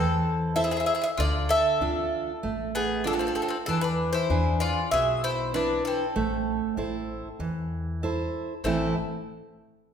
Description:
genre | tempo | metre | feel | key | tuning
greek folk, Greek bouzouki band | 97 BPM | 4/4 | straight | A harmonic minor | A4 = 440 Hz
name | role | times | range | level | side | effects
Greek bouzouki | melody | 0.0-8.9 s | G#4 to E5 | -27 LUFS | left 1 dB | none
bowl-back mandolin | second line | 0.0-8.9 s | B3 to A4 | -34 LUFS | left 2 dB | none
fingerpicked steel-string acoustic guitar | accompaniment | 0.0-8.9 s | A2 to C5 | -29 LUFS | right 2 dB | none
upright bass | bass | 0.0-8.9 s | A1 to E2 | -32 LUFS | left 1 dB | none
room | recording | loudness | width
wet recital hall reverb, RT60 1.3 s | recorded in a church or concert hall | -24 LUFS | side -8 dB against mid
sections
0.0-8.6 A section; 8.6-9.9 B section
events
none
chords
0.0 Am; 1.2 Dm; 3.7 E7; 6.2 Am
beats
0.56 | 1.19 1.81 2.43 3.05 | 3.67 4.29 4.91 5.53 | 6.15 6.78 7.40 8.02 | 8.64

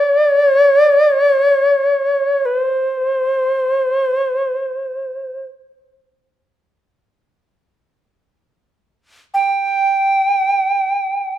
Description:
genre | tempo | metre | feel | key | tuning
japanese traditional, Japanese chamber music | free time | none | none | unclear | A4 = 440 Hz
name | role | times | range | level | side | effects
bright reedy shakuhachi | solo | 0.0-11.4 s | C5 to G5 | -14 LUFS | equal | none
room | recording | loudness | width
moderate recital hall reverb, RT60 1.4 s | minimal, uncompressed stereo recording | -13 LUFS | side -12 dB against mid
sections
0.0-11.4 A section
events
none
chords
none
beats
free time

